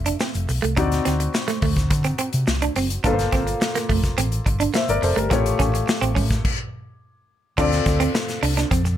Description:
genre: polished 1980s jazz-funk pop.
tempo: 106 BPM.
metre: 4/4.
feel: straight.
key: unclear.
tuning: A4 = 441 Hz.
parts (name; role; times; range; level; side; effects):
warm concert grand piano; accompaniment; 0.0-9.0 s; A3 to E5; -25 LUFS; left 4 dB; lush chorus, plate reverb.
hollow-body short-scale fingered electric bass; bass; 0.0-9.0 s; F1 to D3; -23 LUFS; equal; none.
direct-recorded clean electric guitar; riff; 0.1-8.9 s; A3 to D4; -25 LUFS; right 7 dB; lush chorus.
modern studio drum kit; drums; 0.1-9.0 s; crash cymbal, hi-hat, kick drum, snare drum; -24 LUFS; equal; none.
tube shaker; percussion; 0.1-9.0 s; none; -38 LUFS; left 5 dB; none.
room: light reverb.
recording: none.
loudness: -19 LUFS.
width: side -11 dB against mid.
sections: 0.0-7.6 A section; 7.6-9.0 B section.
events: stop 6.4-7.6.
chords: 0.0 Fmaj9; 0.8 D7b9; 3.0 Gm11; 5.3 A7b13; 7.6 Dm7.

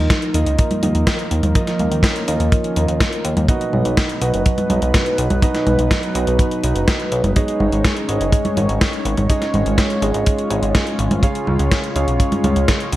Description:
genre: italo disco.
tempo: 124 BPM.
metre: 4/4.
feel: straight.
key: Eb minor.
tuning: A4 = 440 Hz.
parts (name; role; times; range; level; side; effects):
warm analog pad; sustained chords; 0.0-13.0 s; F3 to Db5; -22 LUFS; equal; chorus, vintage 12-bit sampler grit.
dark concert grand piano; stabs; 0.0-13.0 s; B2 to F5; -24 LUFS; right 3 dB; digital delay.
chorused synth bass; bass; 0.0-13.0 s; F#1 to Eb2; -20 LUFS; equal; tube saturation.
clean 12-bit digital drum machine; drums; 0.1-13.0 s; congas, hi-hat, snare drum; -22 LUFS; equal; gated reverb.
kick drum; drums; 0.1-12.8 s; none; -17 LUFS; equal; none.
room: moderate plate reverb, RT60 1.5 s, studio reverb.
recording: bright 1980s-style digital production, vinyl crackle.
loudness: -15 LUFS.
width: side -15 dB against mid.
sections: 0.0-13.0 A section.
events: none.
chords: 0.0 Ebsus2; 3.5 B; 7.4 Absus4; 11.2 Db.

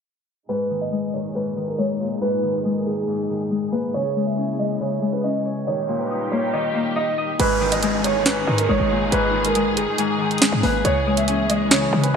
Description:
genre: hip hop, drill.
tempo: 139 BPM.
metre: 4/4.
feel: half-time.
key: G# harmonic minor.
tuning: A4 = 440 Hz.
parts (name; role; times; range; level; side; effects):
dark concert grand piano; melody; 0.5-12.2 s; G#4 to E5; -24 LUFS; right 3 dB; lush chorus, low-pass filter, digital delay.
Celtic harp; accompaniment; 0.5-12.2 s; G#2 to D#5; -23 LUFS; left 5 dB; low-pass filter.
dark symphonic string section; sustained chords; 0.5-12.2 s; A#2 to G#4; -28 LUFS; right 1 dB; none.
short 808-style bass; bass; 7.4-12.2 s; G#1 to C#3; -25 LUFS; right 1 dB; none.
drill drum kit; drums; 7.4-12.1 s; hi-hat, snare drum; -21 LUFS; right 2 dB; gated reverb.
downlifter; sound effects; 7.4-10.8 s; none; -30 LUFS; right 2 dB; none.
room: moderate plate reverb, RT60 2.0 s.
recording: bright 1980s-style digital production, low-pass filter.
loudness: -19 LUFS.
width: side -6 dB against mid.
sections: 0.5-7.4 A section; 7.4-12.2 B section.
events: filter sweep 0.5-7.4.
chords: 0.5 G#sus2; 3.9 C#m; 5.7 D#; 7.4 G#madd9; 10.8 C#m.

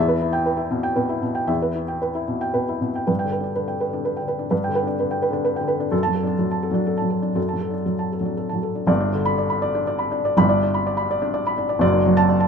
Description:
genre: neoclassical minimalist piano.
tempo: 111-130 BPM.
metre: 3/4.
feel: rubato.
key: unclear.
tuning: A4 = 440 Hz.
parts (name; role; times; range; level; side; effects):
felt-muted upright piano; solo; 0.0-12.5 s; F#1 to B5; -19 LUFS; equal; none.
room: light reverb.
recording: minimal, uncompressed stereo recording.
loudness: -20 LUFS.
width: side -6 dB against mid.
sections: 0.0-3.1 A section; 3.1-8.9 B section; 8.9-12.5 C section.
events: none.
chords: 0.0 Em; 3.1 G; 5.9 D/F#; 8.9 G; 11.8 D/F#.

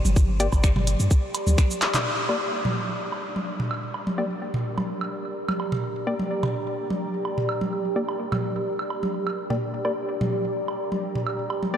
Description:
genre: minimal techno.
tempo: 127 BPM.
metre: 4/4.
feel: straight.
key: G minor.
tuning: A4 = 443 Hz.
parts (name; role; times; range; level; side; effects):
deep dark ambient pad; texture; 0.0-11.8 s; G4 to C6; -30 LUFS; right 1 dB; chorus, built-in reverb, sidechain pumping.
punchy sub bass; bass; 0.1-1.6 s; G1 to G2; -22 LUFS; equal; sidechain pumping.
minimal click drum kit; drums; 0.1-2.0 s; finger snaps, handclaps, hi-hat, shaker; -29 LUFS; equal; low-pass filter on perc, low-pass filter on hats, low-pass filter on snare, low-pass filter on room.
electronic toms and woodblock; percussion; 0.1-11.7 s; none; -28 LUFS; right 1 dB; tape echo.
electronic kick drum; drums; 0.2-1.7 s; none; -19 LUFS; equal; none.
filtered dub chord stab; stabs; 0.4-11.8 s; Bb3 to D5; -32 LUFS; left 2 dB; chorus, tape echo.
room: wet huge ambient reverb, RT60 8.3 s.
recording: dreamy mix soaked in reverb.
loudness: -23 LUFS.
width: side -9 dB against mid.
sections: 0.0-2.1 A section; 2.1-11.8 B section.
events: drum fill 1.8; band accent 1.9.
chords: 0.0 G5; 2.1 Gm.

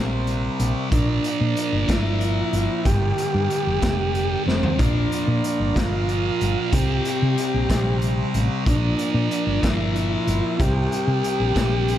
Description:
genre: psychedelic rock.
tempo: 62 BPM (dotted quarters).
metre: 6/8.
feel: straight.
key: Bb lydian.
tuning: A4 = 442 Hz.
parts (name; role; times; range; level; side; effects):
tonewheel organ; sustained chords; 0.0-12.0 s; Bb4 to Bb5; -35 LUFS; right 6 dB; stopped rotary speaker.
thick fuzz guitar; riff; 0.0-12.0 s; G2 to C4; -26 LUFS; equal; distortion, phaser.
woody fretless electric bass; bass; 0.0-12.0 s; F1 to C3; -23 LUFS; equal; none.
raw garage drum kit; drums; 0.3-12.0 s; hi-hat, kick drum, snare drum, toms; -25 LUFS; equal; none.
combo organ; melody; 0.9-12.0 s; C4 to G4; -25 LUFS; equal; analog delay.
room: small room ambience.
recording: echo-heavy mix.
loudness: -19 LUFS.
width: side -11 dB against mid.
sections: 0.0-12.0 A section.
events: drum fill 4.5-4.8.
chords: 0.0 C7; 0.9 Bb; 2.9 Gm7; 4.8 Bb; 6.7 C7; 8.7 Bb; 10.6 C7(no3).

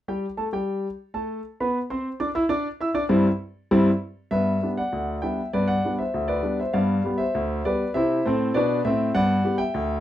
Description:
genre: ragtime piano.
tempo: 99 BPM.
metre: 2/4.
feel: straight.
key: G major.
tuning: A4 = 440 Hz.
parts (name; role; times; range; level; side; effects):
warm concert grand piano; solo; 0.1-10.0 s; D2 to E6; -21 LUFS; equal; none.
room: moderate studio ambience, RT60 0.5 s.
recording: none.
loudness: -22 LUFS.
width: side -12 dB against mid.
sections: 0.0-4.3 A section; 4.3-10.0 B section.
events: none.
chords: 0.0 G; 1.9 C; 4.3 G; 7.9 C; 9.2 G.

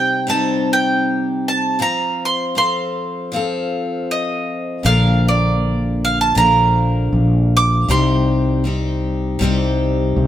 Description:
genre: acoustic folk duo or small band.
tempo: 79 BPM.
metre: 4/4.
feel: swing 55% on 8ths.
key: C dorian.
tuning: A4 = 440 Hz.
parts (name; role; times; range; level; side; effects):
bowl-back mandolin; melody; 0.0-10.3 s; D5 to D6; -18 LUFS; right 2 dB; none.
picked steel-string acoustic guitar; accompaniment; 0.0-10.3 s; Bb2 to Bb4; -20 LUFS; left 2 dB; none.
fretless electric bass; bass; 4.8-10.3 s; Bb1 to C2; -17 LUFS; equal; none.
room: light reverb.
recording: band playing live in one room.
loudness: -15 LUFS.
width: side -11 dB against mid.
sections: 0.0-10.3 A section.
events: none.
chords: 0.0 Cm; 1.8 F; 4.8 Bb; 7.9 Cm.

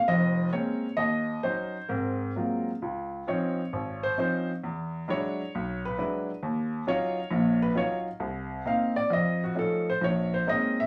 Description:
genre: solo jazz.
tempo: 133 BPM.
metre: 4/4.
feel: swing 68% on 8ths, rubato.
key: Db major.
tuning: A4 = 440 Hz.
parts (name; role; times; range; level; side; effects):
clear upright piano; solo; 0.0-10.9 s; F1 to F5; -28 LUFS; equal; none.
room: moderate booth ambience, RT60 0.2 s.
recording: studio ambience.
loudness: -29 LUFS.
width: mono.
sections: 0.0-2.8 A section; 2.8-10.9 B section.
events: upright piano solo 2.8-10.9.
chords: 0.0 Bbm9; 1.0 Ebm7; 1.9 Ab13; 2.8 Dbmaj9; 4.6 E9; 6.4 Ebm9; 8.2 Cm11; 9.1 F7b13; 10.0 Bbm11.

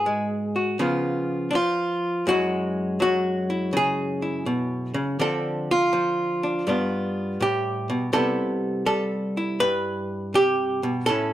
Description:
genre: solo jazz.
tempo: 82 BPM.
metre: 4/4.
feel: swing 67% on 8ths.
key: unclear.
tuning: A4 = 440 Hz.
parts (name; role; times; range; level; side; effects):
archtop guitar, miked and amplified; solo; 0.0-11.3 s; F#2 to B4; -22 LUFS; equal; none.
room: moderate studio reverb, RT60 0.9 s.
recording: none.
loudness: -22 LUFS.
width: side -13 dB against mid.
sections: 0.0-11.3 A section.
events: none.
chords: 0.0 G#m7; 0.8 C#7; 2.3 F#sus2; 5.2 Dm7; 6.7 G7; 8.1 Cmaj7.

